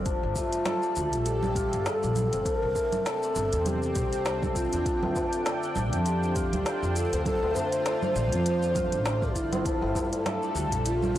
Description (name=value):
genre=organic downtempo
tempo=100 BPM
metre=4/4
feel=swing 56% on 16ths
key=D minor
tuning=A4 = 440 Hz
part: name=warm analog pad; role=sustained chords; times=0.0-11.2 s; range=C3 to G5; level=-34 LUFS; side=equal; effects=chorus, sidechain pumping
part: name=santur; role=arpeggios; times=0.0-11.2 s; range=A3 to D5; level=-33 LUFS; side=left 3 dB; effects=tape echo
part: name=upright bass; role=bass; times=0.0-11.2 s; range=G1 to F2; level=-30 LUFS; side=equal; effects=transformer saturation
part: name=electronic kick drum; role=drums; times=0.1-11.2 s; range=none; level=-33 LUFS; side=equal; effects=overdrive
part: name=organic electronic drum kit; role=drums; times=0.1-11.2 s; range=congas, hi-hat, shaker, snare drum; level=-33 LUFS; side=right 2 dB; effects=overdrive
part: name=breathy mellow bass bansuri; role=melody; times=0.4-11.2 s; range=E4 to C5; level=-30 LUFS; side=equal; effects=tape echo
part: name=tabla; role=percussion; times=5.0-10.8 s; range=none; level=-39 LUFS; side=left 1 dB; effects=none
room=moderate concert hall reverb, RT60 1.9 s, small room reverb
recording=blown-out, overdriven recording, overdrive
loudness=-25 LUFS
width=side -13 dB against mid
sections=0.0-11.2 A section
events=none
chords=0.1 Gm7; 2.5 C7; 4.9 Dm7; 9.7 Gm7